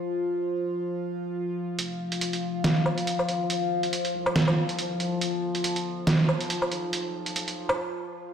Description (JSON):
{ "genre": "deep dubstep", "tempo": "140 BPM", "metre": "4/4", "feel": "swing 55% on 16ths, half-time", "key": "F minor", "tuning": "A4 = 441 Hz", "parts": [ { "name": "overtone-sweeping drone", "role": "sustained chords", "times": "0.0-8.3 s", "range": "F3 to F4", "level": "-29 LUFS", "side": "left 2 dB", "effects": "chorus, built-in reverb, phaser" }, { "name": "soft dub sub bass", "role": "bass", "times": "1.8-7.8 s", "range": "F1 to C2", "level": "-44 LUFS", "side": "right 2 dB", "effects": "high-pass filter" }, { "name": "trip hop sampler-style drum kit", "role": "drums", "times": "1.8-7.8 s", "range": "hi-hat, snare drum, woodblock", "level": "-26 LUFS", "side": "right 2 dB", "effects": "studio reverb" } ], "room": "moderate lush hall reverb, RT60 2.1 s", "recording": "played on a big sound system in a bare room, stone room reverb", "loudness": "-25 LUFS", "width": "side -8 dB against mid", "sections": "0.0-1.8 A section; 1.8-8.3 B section", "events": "build-up 1.8-8.3; break 7.8-8.3", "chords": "0.0 N.C.; 1.8 Fm; 5.2 G" }